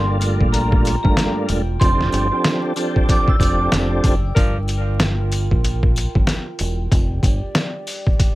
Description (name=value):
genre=hip hop, boom-bap hip-hop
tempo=94 BPM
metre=4/4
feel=swing 60% on 16ths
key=G minor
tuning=A4 = 439 Hz
part: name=vibraphone with hard mallets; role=melody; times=0.0-3.7 s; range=Bb5 to E6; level=-25 LUFS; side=equal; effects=high-pass filter, low-pass filter, plate reverb, digital delay
part: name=tonewheel organ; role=accompaniment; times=0.0-4.2 s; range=G2 to A4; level=-22 LUFS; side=right 1 dB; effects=chorus vibrato, slow rotary speaker, cassette tape, high-pass filter, low-pass filter, plate reverb
part: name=dark analog pad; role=sustained chords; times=0.0-8.3 s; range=F4 to G5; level=-31 LUFS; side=right 2 dB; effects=chorus, high-pass filter, low-pass filter, plate reverb
part: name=deep dub fingered electric bass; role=bass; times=0.0-7.4 s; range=E1 to Bb1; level=-21 LUFS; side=equal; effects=none
part: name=trip hop sampler-style drum kit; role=drums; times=0.2-8.3 s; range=hi-hat, kick drum, snare drum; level=-17 LUFS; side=equal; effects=none
part: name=sleigh bells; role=percussion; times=0.2-8.3 s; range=none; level=-36 LUFS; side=left 2 dB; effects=none
part: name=mellow saxophone section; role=stabs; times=4.4-4.6 s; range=F3 to Bb4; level=-28 LUFS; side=left 1 dB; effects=high-pass filter, low-pass filter, plate reverb, digital delay
room=light reverb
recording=vinyl crackle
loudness=-16 LUFS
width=side -18 dB against mid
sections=0.0-8.3 A section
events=none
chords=0.0 Gm9; 1.8 F69; 4.4 Gm7; 6.9 Fsus2